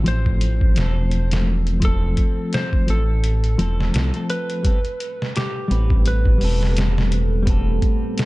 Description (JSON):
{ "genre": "trip hop", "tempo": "85 BPM", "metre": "4/4", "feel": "swing 56% on 16ths", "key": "unclear", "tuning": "A4 = 440 Hz", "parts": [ { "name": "clean electric guitar", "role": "accompaniment", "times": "0.0-8.3 s", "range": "F3 to C5", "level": "-26 LUFS", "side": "left 2 dB", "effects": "harmonic tremolo" }, { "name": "dark detuned saw bass", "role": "bass", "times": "0.0-7.8 s", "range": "E1 to C2", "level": "-19 LUFS", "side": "equal", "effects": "none" }, { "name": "clean lap steel guitar", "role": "melody", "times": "0.1-6.7 s", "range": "G4 to C5", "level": "-29 LUFS", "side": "equal", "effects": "dub echo" }, { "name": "trip hop sampler-style drum kit", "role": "drums", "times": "0.1-8.3 s", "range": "hi-hat, kick drum, snare drum", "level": "-21 LUFS", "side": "equal", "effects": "none" }, { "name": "deep dark ambient pad", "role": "sustained chords", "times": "5.6-8.3 s", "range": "A3 to A4", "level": "-30 LUFS", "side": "right 1 dB", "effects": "chorus, built-in reverb" } ], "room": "digital ambience", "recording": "nothing above 10.8 kHz", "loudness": "-17 LUFS", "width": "side -20 dB against mid", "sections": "0.0-8.3 A section", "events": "none", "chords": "0.0 F; 4.6 Am9" }